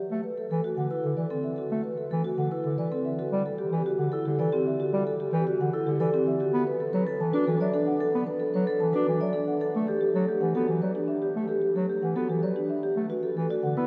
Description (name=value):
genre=classical, minimalist pattern music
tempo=112 BPM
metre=3/4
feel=straight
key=D mixolydian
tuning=A4 = 440 Hz
part: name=dark bass clarinet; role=accompaniment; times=0.1-13.9 s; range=D3 to D4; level=-31 LUFS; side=equal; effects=none
part: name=marimba with soft mallets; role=melody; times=0.2-13.9 s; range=G4 to A5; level=-32 LUFS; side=equal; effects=none
part: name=vibraphone with medium mallets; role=arpeggios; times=0.5-13.9 s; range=C4 to D5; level=-32 LUFS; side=equal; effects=none
room=wet cathedral reverb, RT60 5.5 s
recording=worn, warbling old tape, cassette tape, warbly pitch drift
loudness=-27 LUFS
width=mono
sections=0.1-13.9 A section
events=none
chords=0.1 D9; 3.3 C69/D; 6.5 Bm7; 9.7 Gmaj13; 13.0 Dadd9 (rootless)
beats=| 0.11 0.64 1.18 | 1.71 2.25 2.79 | 3.32 3.86 4.39 | 4.93 5.46 6.00 | 6.54 7.07 7.61 | 8.14 8.68 9.21 | 9.75 10.29 10.82 | 11.36 11.89 12.43 | 12.96 13.50